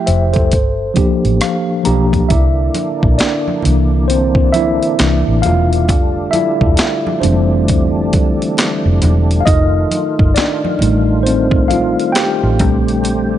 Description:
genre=R&B, neo-soul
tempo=67 BPM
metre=4/4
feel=swing 61% on 16ths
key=unclear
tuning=A4 = 440 Hz
part: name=mellow tine electric piano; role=accompaniment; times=0.0-13.4 s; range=E3 to Bb5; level=-15 LUFS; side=left 1 dB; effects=medium stereo tremolo
part: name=vintage muted fingered electric bass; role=bass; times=0.1-13.3 s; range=E1 to C2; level=-15 LUFS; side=equal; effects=none
part: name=boom bap sampler-style drum kit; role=drums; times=0.1-13.3 s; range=handclaps, hi-hat, kick drum, rim click, snare drum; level=-16 LUFS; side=equal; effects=none
part: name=percussive tonewheel organ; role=sustained chords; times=2.3-13.4 s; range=C3 to G4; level=-22 LUFS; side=right 2 dB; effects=overdrive, chorus vibrato, slow rotary speaker
part: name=congas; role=percussion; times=2.7-13.3 s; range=none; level=-25 LUFS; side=right 4 dB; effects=none
room=light reverb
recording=nothing above 10.5 kHz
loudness=-11 LUFS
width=side -12 dB against mid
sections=0.0-2.3 A section; 2.3-13.4 B section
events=tine electric piano fill 1.0-2.3; tine electric piano solo 2.3-13.4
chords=0.0 Fmaj9; 0.5 Gm7; 2.3 C9; 5.0 C7; 5.9 Fmaj13; 9.5 F7; 12.6 Bbmaj13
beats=0.52 1.41 | 2.31 3.20 4.10 4.99 | 5.89 6.79 7.68 8.58 | 9.47 10.37 11.26 12.16 | 13.05

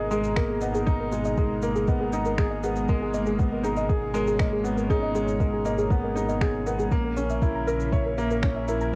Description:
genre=piano and strings electronica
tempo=119 BPM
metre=4/4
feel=straight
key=G# minor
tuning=A4 = 441 Hz
part: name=lush unison pad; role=sustained chords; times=0.0-9.0 s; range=B2 to A#4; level=-35 LUFS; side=equal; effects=chorus, sidechain pumping, cassette tape
part: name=soft round pluck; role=arpeggios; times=0.0-8.9 s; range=G#4 to A#5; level=-33 LUFS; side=equal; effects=chorus, sidechain pumping, cassette tape, analog delay
part: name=felt-muted upright piano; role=riff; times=0.0-9.0 s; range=G#3 to C#5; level=-30 LUFS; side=equal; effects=cassette tape, analog delay
part: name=round analog bass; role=bass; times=0.0-9.0 s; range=G#1 to A#1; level=-34 LUFS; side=equal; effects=sidechain pumping
part: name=electronic shaker and finger snaps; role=drums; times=0.1-8.9 s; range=none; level=-40 LUFS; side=equal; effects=cassette tape
part: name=electronic kick drum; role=drums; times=0.4-8.5 s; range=none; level=-26 LUFS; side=equal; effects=cassette tape
room=moderate studio reverb, RT60 0.6 s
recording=home recording on cassette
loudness=-25 LUFS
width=mono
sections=0.0-9.0 A section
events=none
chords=0.0 G#madd9; 6.9 A#dim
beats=0.36 | 0.87 1.37 1.88 2.38 | 2.89 3.39 3.89 4.40 | 4.90 5.41 5.91 6.42 | 6.92 7.42 7.93 8.43 | 8.94

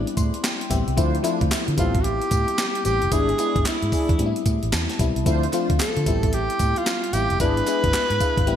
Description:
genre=R&B, new jack swing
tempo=112 BPM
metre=4/4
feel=swing 63% on 16ths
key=unclear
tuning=A4 = 439 Hz
part: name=breathy tenor saxophone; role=melody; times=0.0-8.6 s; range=D4 to B4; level=-25 LUFS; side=right 1 dB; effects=digital delay
part: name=FM electric piano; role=accompaniment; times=0.0-8.6 s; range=F3 to C6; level=-26 LUFS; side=left 6 dB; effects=chorus
part: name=vintage muted fingered electric bass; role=bass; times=0.0-8.6 s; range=F1 to D3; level=-25 LUFS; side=right 1 dB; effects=none
part: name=breakbeat sampler-style drum kit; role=drums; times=0.1-8.6 s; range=handclaps, hi-hat, kick drum, snare drum, tambourine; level=-24 LUFS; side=right 1 dB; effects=gated reverb
part: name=group handclap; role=percussion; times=0.4-8.1 s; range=none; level=-40 LUFS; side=right 5 dB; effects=none
part: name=mellow synth brass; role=stabs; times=1.0-8.4 s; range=C4 to C5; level=-31 LUFS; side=right 1 dB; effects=chorus, digital delay
room=moderate lush hall reverb, RT60 1.8 s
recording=bright 1980s-style digital production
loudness=-19 LUFS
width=side -9 dB against mid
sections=0.0-8.6 A section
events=FM electric piano fill 0.0-1.0, 4.5-5.3, 7.9-8.6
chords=0.0 Am7; 1.0 Dm7; 1.8 Am7; 3.1 E7/G#; 4.2 Am7; 5.3 Dm7; 6.1 Am7; 7.4 E7/G#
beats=0.44 | 0.97 1.51 2.05 2.58 | 3.12 3.65 4.19 4.72 | 5.26 5.80 6.33 6.87 | 7.40 7.94 8.47

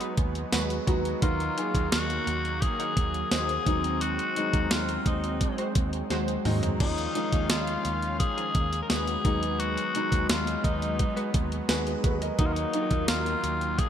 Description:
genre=1980s-style pop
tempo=86 BPM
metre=4/4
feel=straight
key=unclear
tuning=A4 = 440 Hz
part: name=raspy tenor saxophone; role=melody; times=0.0-13.9 s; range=Eb4 to Bb4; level=-31 LUFS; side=left 3 dB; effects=shimmer reverb, digital delay
part: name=clear grand piano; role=accompaniment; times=0.0-13.9 s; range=Eb3 to Eb5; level=-32 LUFS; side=equal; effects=wide subtle chorus, shimmer reverb
part: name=warm analog pad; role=sustained chords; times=0.0-13.9 s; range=Eb3 to F5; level=-36 LUFS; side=right 2 dB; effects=chorus, tremolo, shimmer reverb
part: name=funky polysynth comp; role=stabs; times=0.0-12.2 s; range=F3 to C5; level=-36 LUFS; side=equal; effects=chorus, shimmer reverb
part: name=clean 12-bit digital drum machine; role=drums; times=0.0-13.9 s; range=crash cymbal, hi-hat, kick drum, snare drum, tambourine, toms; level=-28 LUFS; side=equal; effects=gated reverb
part: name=vintage muted picked electric bass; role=bass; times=0.2-13.8 s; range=Eb2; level=-33 LUFS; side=equal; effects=none
room=moderate plate reverb, RT60 3.5 s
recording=bright 1980s-style digital production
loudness=-24 LUFS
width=side -9 dB against mid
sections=0.0-13.9 A section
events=drum fill 6.1-6.8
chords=0.0 Abm7/Eb; 1.2 Ebm; 3.7 Ab7/Eb; 6.8 Dbadd9/Eb; 9.2 Abm7/Eb; 12.4 Ebm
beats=0.53 | 1.23 1.92 2.62 3.32 | 4.02 4.71 5.41 6.11 | 6.81 7.50 8.20 8.90 | 9.60 10.29 10.99 11.69 | 12.39 13.09 13.78

